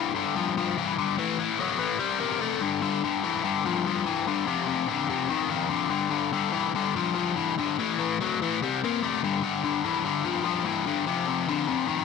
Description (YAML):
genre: rock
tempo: 146 BPM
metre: 4/4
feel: straight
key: unclear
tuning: A4 = 440 Hz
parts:
  - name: biting overdriven guitar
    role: solo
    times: 0.0-12.0 s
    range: F2 to Bb3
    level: -24 LUFS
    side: left 8 dB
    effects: none
room: light reverb, digital ambience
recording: none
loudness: -24 LUFS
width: side -4 dB against mid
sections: 0.0-12.0 A section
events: none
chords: 0.0 G5; 1.2 A5; 2.0 C5; 2.6 G5; 4.5 F5; 5.9 G5; 7.8 A5; 8.6 C5; 9.2 G5; 11.1 F5